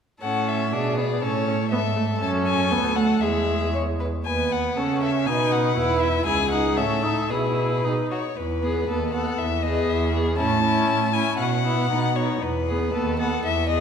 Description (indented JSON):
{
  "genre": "quick classical-period movement for string quartet",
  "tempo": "119 BPM",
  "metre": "2/4",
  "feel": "rubato",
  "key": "A major, E major from 4.3 s",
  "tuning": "A4 = 440 Hz",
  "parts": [
    { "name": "rich violin", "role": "melody", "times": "0.2-13.8 s", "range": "B4 to A5", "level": "-26 LUFS", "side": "left 8 dB", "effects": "none" },
    { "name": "rich violin", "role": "second line", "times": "0.2-13.8 s", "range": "D#4 to C#5", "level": "-28 LUFS", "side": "left 2 dB", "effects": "none" },
    { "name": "warm viola", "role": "accompaniment", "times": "0.2-13.8 s", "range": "G#3 to E4", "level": "-27 LUFS", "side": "right 3 dB", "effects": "none" },
    { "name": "warm cello", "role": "bass", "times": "0.2-13.8 s", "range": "C#2 to C#3", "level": "-25 LUFS", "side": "right 3 dB", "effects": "none" }
  ],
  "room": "wet concert hall reverb, RT60 2.0 s",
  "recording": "minimal, uncompressed stereo recording",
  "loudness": "-20 LUFS",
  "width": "side -7 dB against mid",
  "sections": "0.2-8.4 A section; 8.4-13.8 B section",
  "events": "none",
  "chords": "0.2 A; 0.7 E7/B; 1.2 A; 2.2 F#m; 2.7 Bm7/D; 3.2 E; 4.3 B/D#; 4.8 A/C#; 5.3 B; 5.8 E5; 6.3 C#5; 6.8 A; 7.3 E/B; 7.8 B; 8.4 E; 8.9 B7/D#; 9.4 E; 10.4 A; 11.4 Bsus4; 12.4 E; 12.9 B7/D#",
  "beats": "| 0.21 0.72 | 1.22 1.72 | 2.21 2.71 | 3.22 3.73 | 4.25 4.76 | 5.27 5.76 | 6.27 6.77 | 7.30 7.85 | 8.37 8.88 | 9.39 9.89 | 10.38 10.88 | 11.39 11.91 | 12.42 12.94 | 13.44"
}